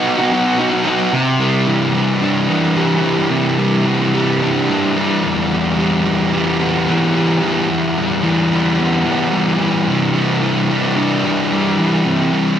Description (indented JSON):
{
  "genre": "rock",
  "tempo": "110 BPM",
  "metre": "4/4",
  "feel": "straight",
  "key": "unclear",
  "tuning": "A4 = 441 Hz",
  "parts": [
    { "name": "fuzz guitar", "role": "solo", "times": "0.0-12.6 s", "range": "E2 to F#4", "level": "-14 LUFS", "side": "equal", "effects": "distortion, digital delay" }
  ],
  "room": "light reverb, digital ambience",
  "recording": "none",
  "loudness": "-14 LUFS",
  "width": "side -9 dB against mid",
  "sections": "0.0-1.1 A section; 1.1-12.6 B section",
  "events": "none",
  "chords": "0.0 B; 1.1 Cadd9; 5.2 Em; 9.9 Cadd9"
}